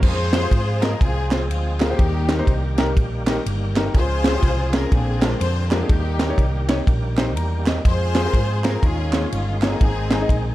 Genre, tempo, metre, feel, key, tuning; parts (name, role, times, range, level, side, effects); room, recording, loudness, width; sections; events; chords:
uptempo gospel; 123 BPM; 4/4; swing 62% on 8ths; A4 = 441 Hz
clear studio string section; melody; 0.0-10.5 s; Bb3 to C5; -27 LUFS; left 2 dB
overdriven tonewheel organ; sustained chords; 0.0-10.5 s; D3 to Ab4; -31 LUFS; right 2 dB; slow rotary speaker, chorus vibrato
hollow-body short-scale fingered electric bass; bass; 0.0-10.5 s; G1 to Ab2; -23 LUFS; equal
tight funk drum kit; drums; 0.0-10.4 s; crash cymbal, kick drum, ride cymbal, snare drum; -21 LUFS; equal
clear concert grand piano; accompaniment; 0.3-10.5 s; Ab2 to Bb5; -27 LUFS; left 3 dB
group handclap; percussion; 0.3-10.2 s; -35 LUFS; right 7 dB
small room ambience; dark, warm production; -17 LUFS; side -15 dB against mid
0.0-10.5 A section
0.0 Fm; 2.0 Eb; 3.9 Db; 4.9 Bb9; 5.9 Eb; 7.8 Fm; 8.8 Eb9sus4; 9.8 Ab